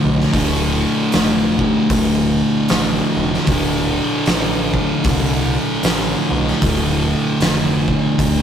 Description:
stoner and doom metal; 76 BPM; 4/4; swing 60% on 8ths; D minor; A4 = 440 Hz
thick fuzz guitar; riff; 0.0-8.4 s; D2 to D3; -17 LUFS; equal; distortion
growling picked electric bass; bass; 0.0-8.4 s; D1 to C2; -22 LUFS; equal; overdrive
oversized low-tuned drum kit; drums; 0.2-8.4 s; hi-hat, kick drum, snare drum; -20 LUFS; equal
light reverb; rough rehearsal-room recording, tube saturation; -14 LUFS; side -8 dB against mid
0.0-8.4 A section
0.0 Dm
| 0.34 1.13 1.91 2.70 | 3.48 4.27 5.05 5.84 | 6.62 7.41 8.19

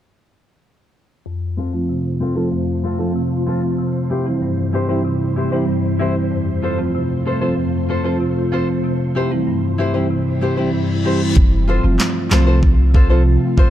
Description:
dancehall; 95 BPM; 4/4; straight; F major; A4 = 440 Hz
marimba with medium mallets; accompaniment; 1.3-13.6 s; F2 to F4; -19 LUFS; equal; low-pass filter
ethereal airy pad; sustained chords; 1.9-13.7 s; C3 to C5; -25 LUFS; right 1 dB; ensemble chorus, built-in reverb, phaser, sidechain pumping, low-pass filter
nylon-string guitar; arpeggios; 1.6-13.7 s; C4 to C5; -24 LUFS; left 3 dB; low-pass filter
reverse cymbal; sound effects; 10.5-11.4 s; -31 LUFS; left 5 dB
punchy sub bass; bass; 11.4-13.7 s; F1 to C2; -14 LUFS; equal
afro-pop drum kit; drums; 11.4-13.7 s; handclaps, kick drum, snare drum; -15 LUFS; equal
light reverb; dark, warm production; -15 LUFS; side -12 dB against mid
1.3-11.4 A section; 11.4-13.7 B section
filter sweep 1.3-11.4; reverse cymbal 10.5-11.4
1.3 F; 3.8 C; 6.3 F; 8.8 C; 11.4 F
| 1.26 1.89 2.52 3.15 | 3.79 4.42 5.05 5.68 | 6.31 6.94 7.58 8.21 | 8.84 9.47 10.10 10.73 | 11.37 12.00 12.63 13.26

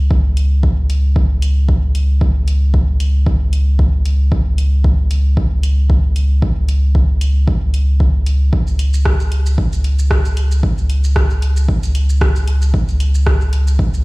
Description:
dub techno; 114 BPM; 4/4; swing 55% on 16ths; A4 = 441 Hz
soft dub sub bass; bass; 0.0-14.0 s; C#2; -14 LUFS; equal; tube saturation, sidechain pumping
electronic kick drum; drums; 0.1-13.9 s; -15 LUFS; equal
deep house drum kit; drums; 0.4-14.0 s; hi-hat, rim click, shaker; -26 LUFS; equal
little or no reverb; played on a big sound system in a bare room, stone room reverb; -12 LUFS; side -25 dB against mid
0.0-14.0 A section
| 0.11 0.63 1.16 1.69 | 2.21 2.74 3.27 3.79 | 4.32 4.84 5.37 5.90 | 6.42 6.95 7.47 8.00 | 8.53 9.05 9.58 10.11 | 10.63 11.16 11.69 12.21 | 12.74 13.27 13.79

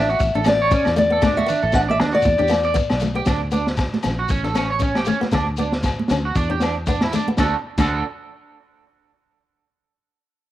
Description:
highlife guitar band; 117 BPM; 4/4; swing 55% on 16ths; D major; A4 = 440 Hz
fingerpicked acoustic archtop guitar; melody; 0.0-3.0 s; D5 to F#5; -19 LUFS; left 1 dB; cassette tape
electric guitar at the edge of break-up; arpeggios; 0.0-8.0 s; C#4 to D5; -24 LUFS; right 5 dB; lush chorus, analog delay
fingered electric bass; bass; 0.0-8.0 s; A1 to E2; -25 LUFS; equal
shekere; percussion; 0.1-8.0 s; -32 LUFS; left 3 dB
vintage drum kit; drums; 0.2-7.9 s; crash cymbal, kick drum, snare drum; -23 LUFS; equal; cassette tape
flamenco guitar; accompaniment; 0.4-7.9 s; F#3 to D4; -25 LUFS; left 4 dB
agogo bells; percussion; 0.4-7.9 s; -31 LUFS; left 5 dB
congas; percussion; 0.5-8.0 s; -26 LUFS; right 4 dB
light reverb, studio reverb; home recording on cassette; -17 LUFS; side -14 dB against mid
0.0-3.3 A section; 3.3-7.4 B section; 7.4-9.4 C section
0.2 A; 1.2 D; 2.3 Em7; 3.3 D; 4.3 A; 5.3 D5; 6.4 E7(no3); 7.4 D
0.20 0.71 | 1.23 1.74 2.25 2.77 | 3.28 3.79 4.30 4.82 | 5.33 5.84 6.36 6.87 | 7.38 7.90

